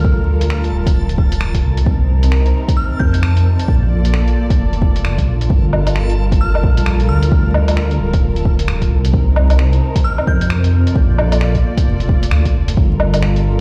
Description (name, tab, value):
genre	future garage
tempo	132 BPM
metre	4/4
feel	swing 61% on 16ths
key	G minor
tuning	A4 = 441 Hz
part	glassy synth bell	melody	0.0-3.4, 6.4-10.7 s	F6 to G6	-31 LUFS	equal	chorus, phaser, digital delay
part	dark chamber string section	sustained chords	0.0-13.6 s	C3 to D5	-26 LUFS	equal	sidechain pumping
part	dark detuned saw bass	bass	0.0-13.6 s	D1 to F2	-17 LUFS	equal	sidechain pumping
part	electronic kick drum	drums	0.0-12.9 s	none	-17 LUFS	equal	none
part	backwards swelling texture	texture	0.0-13.6 s	F4 to A5	-37 LUFS	equal	built-in reverb
part	lo-fi sampler-style drum kit	drums	0.4-13.4 s	finger snaps, hi-hat, woodblock	-26 LUFS	equal	none
room	little or no reverb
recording	played on a big sound system in a bare room, large studio reverb, vinyl crackle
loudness	-15 LUFS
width	mono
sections	0.0-12.8 A section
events	none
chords	0.0 Gm9; 1.9 Cm7; 3.7 Bbmaj7; 5.5 Gm9; 9.1 Cm7; 11.0 Bbmaj7; 12.8 Gm9